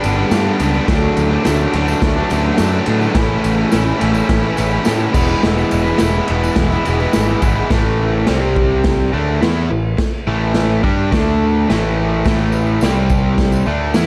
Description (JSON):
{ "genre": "garage rock duo or trio", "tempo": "106 BPM", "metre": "4/4", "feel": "straight", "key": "unclear", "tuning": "A4 = 440 Hz", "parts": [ { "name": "crunchy overdriven guitar", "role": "riff", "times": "0.0-14.1 s", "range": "G2 to G4", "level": "-19 LUFS", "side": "equal", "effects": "none" }, { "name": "growling picked electric bass", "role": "bass", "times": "0.0-14.1 s", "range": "E1 to A2", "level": "-21 LUFS", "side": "equal", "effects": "overdrive" }, { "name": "raw garage drum kit", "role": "drums", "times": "0.0-14.1 s", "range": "crash cymbal, kick drum, ride cymbal, snare drum", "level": "-21 LUFS", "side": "equal", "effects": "none" }, { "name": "tambourine", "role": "percussion", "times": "0.0-7.6, 12.2-14.1 s", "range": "none", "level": "-40 LUFS", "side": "equal", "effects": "none" } ], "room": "moderate club reverb, RT60 0.7 s", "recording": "none", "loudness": "-16 LUFS", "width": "mono", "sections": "0.0-7.7 A section; 7.7-14.1 B section", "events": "none", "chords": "0.0 G; 0.9 D; 3.2 A; 5.2 E; 7.7 A5; 8.3 C5; 9.1 A5; 11.1 D5; 11.7 A5; 12.8 C5" }